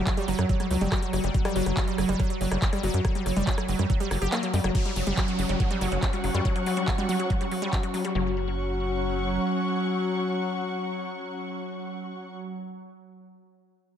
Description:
psychedelic trance; 141 BPM; 4/4; straight; A4 = 441 Hz
evolving wavetable pad; sustained chords; 0.0-12.4 s; F#3; -31 LUFS; equal; chorus, built-in reverb, sidechain pumping
tight sequencer bass; bass; 0.0-9.4 s; F#1 to F#2; -28 LUFS; equal
wide unison pluck; riff; 0.1-8.3 s; F#3 to G4; -30 LUFS; moving between left 6 dB and right 4 dB; auto-pan, sidechain pumping, ping-pong delay
drum and bass drum kit; drums; 0.1-8.1 s; crash cymbal, handclaps, hi-hat, rim click; -34 LUFS; equal
electronic kick drum; drums; 0.1-7.8 s; -26 LUFS; equal
downlifter; sound effects; 4.7-8.2 s; -40 LUFS; equal
dark studio string section; texture; 4.7-12.3 s; C#4 to C#6; -32 LUFS; left 2 dB; sidechain pumping
moderate lush hall reverb, RT60 1.6 s; dreamy mix soaked in reverb; -24 LUFS; side -9 dB against mid
0.0-4.7 A section; 4.7-8.2 B section; 8.2-11.6 C section
drop 0.0-4.7; kick drops out 4.3-4.7
0.0 F#5

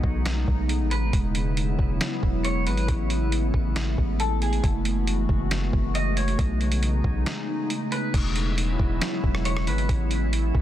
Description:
hip hop, atmospheric cloud-rap; 137 BPM; 4/4; half-time; E major; A4 = 438 Hz
glassy FM pad; sustained chords; 0.0-10.6 s; C#3 to F#4; -28 LUFS; equal; ensemble chorus, built-in reverb
long sustained 808-style bass; bass; 0.0-10.6 s; E1 to B1; -25 LUFS; equal
boom bap sampler-style drum kit; drums; 0.0-10.6 s; crash cymbal, hi-hat, kick drum, rim click, snare drum; -27 LUFS; equal
clean electric guitar; melody; 0.9-9.9 s; G#4 to D#5; -34 LUFS; left 1 dB; lush chorus, low-pass filter, digital delay
little or no reverb; dense, heavily limited modern master; -22 LUFS; side -12 dB against mid
0.0-8.1 A section; 8.1-10.6 B section
break 7.3-8.1
0.0 B13; 1.1 E69; 2.9 Amaj9; 4.6 F#m11; 6.4 B13; 8.1 E69; 9.9 Amaj9

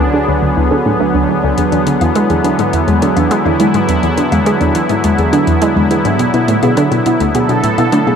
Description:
ambient, sequencer-driven space music; 104 BPM; 4/4; straight; A4 = 440 Hz
sweeping resonant pad; sustained chords; 0.0-8.2 s; D2 to A4; -14 LUFS; equal; chorus
soft round pluck; arpeggios; 0.0-8.2 s; G#3 to D5; -17 LUFS; right 2 dB; chorus, auto-pan, ping-pong delay
analog pluck; riff; 0.0-8.2 s; D2 to A3; -15 LUFS; equal; chorus, ping-pong delay
electronic hi-hat and woodblock; percussion; 1.6-8.2 s; -26 LUFS; left 6 dB; overdrive, ping-pong delay
moderate plate reverb, RT60 2.5 s; -10 LUFS; side -7 dB against mid
0.0-8.2 A section
0.0 D; 1.6 Eadd9; 6.2 Bm7

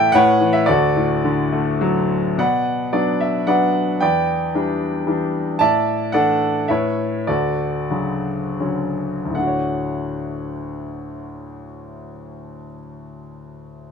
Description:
classical, lyrical solo piano; 77-114 BPM; 3/4; rubato; D major; A4 = 439 Hz
bright grand piano; solo; 0.0-13.9 s; D2 to A5; -18 LUFS; equal
light reverb; minimal, uncompressed stereo recording; -17 LUFS; side -6 dB against mid
0.0-2.4 A section; 2.4-9.4 B section; 9.4-13.9 C section
slowing down 5.6-9.4
0.1 Aadd9; 0.7 D; 2.4 Bm; 4.0 Em7; 5.6 Asus4; 6.7 Aadd9; 7.3 Dmaj7

